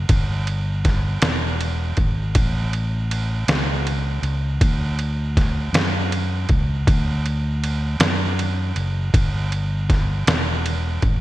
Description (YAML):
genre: slow gospel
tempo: 53 BPM (dotted quarters)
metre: 6/8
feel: straight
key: unclear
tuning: A4 = 440 Hz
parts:
  - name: fingered electric bass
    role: bass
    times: 0.0-11.2 s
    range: E1 to F#2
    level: -22 LUFS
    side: equal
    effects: none
  - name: trip hop sampler-style drum kit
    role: drums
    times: 0.1-11.2 s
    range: kick drum, ride cymbal, snare drum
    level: -21 LUFS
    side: equal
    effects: gated reverb
room: light reverb, digital ambience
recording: bright 1980s-style digital production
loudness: -19 LUFS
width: side -16 dB against mid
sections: 0.0-11.2 A section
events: none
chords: none